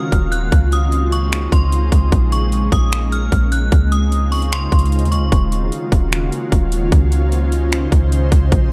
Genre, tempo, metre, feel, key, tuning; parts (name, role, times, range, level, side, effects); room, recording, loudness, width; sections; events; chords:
hip hop, atmospheric cloud-rap; 150 BPM; 4/4; half-time; A4 = 441 Hz
metallic FM bell; melody; 0.0-5.3 s; C6 to Gb6; -27 LUFS; equal; chorus, digital delay
ethereal airy pad; sustained chords; 0.0-8.7 s; Db3 to Db5; -24 LUFS; equal; ensemble chorus, built-in reverb, sidechain pumping
soft 808-style bass; bass; 0.1-8.7 s; Eb1 to Eb2; -19 LUFS; equal
trap drum kit; drums; 0.1-8.6 s; finger snaps, hi-hat, kick drum; -19 LUFS; equal; overdrive
digital ambience; -16 LUFS; mono
0.0-5.3 A section; 5.3-8.7 B section
0.0 Ebm7; 0.5 Dbmaj7; 2.1 Bbm7; 3.7 Dbmaj7; 5.3 Ebm7; 6.9 Dbmaj7